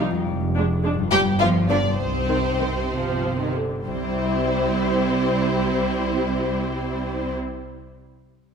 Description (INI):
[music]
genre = cinematic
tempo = 62-73 BPM (dotted quarters)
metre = 6/8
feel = straight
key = unclear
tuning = A4 = 435 Hz
[part]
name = warm studio viola section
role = accompaniment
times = 0.0-7.3 s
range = D3 to E4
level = -26 LUFS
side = right 3 dB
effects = none
[part]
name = concert harp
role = arpeggios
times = 0.0-7.8 s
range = F2 to E5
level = -29 LUFS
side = left 7 dB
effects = none
[part]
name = warm studio double bass section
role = bass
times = 0.0-7.3 s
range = F1 to C2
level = -27 LUFS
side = right 3 dB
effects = none
[part]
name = warm studio violin section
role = melody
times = 1.1-7.3 s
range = C5 to G5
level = -29 LUFS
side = left 4 dB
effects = none
[part]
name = rich studio violin section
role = second line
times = 1.1-7.3 s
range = C4 to G4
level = -27 LUFS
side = left 1 dB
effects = none
[part]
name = warm studio cello section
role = bass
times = 1.1-7.3 s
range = C3 to C4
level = -28 LUFS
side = right 2 dB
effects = none
[sound]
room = moderate scoring stage reverb, RT60 1.6 s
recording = none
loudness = -20 LUFS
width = side -6 dB against mid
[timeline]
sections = 0.0-3.9 A section; 3.9-7.7 B section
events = slowing down 0.0-3.9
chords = 0.3 Ddim/F; 1.1 G7; 2.0 Cm; 3.9 C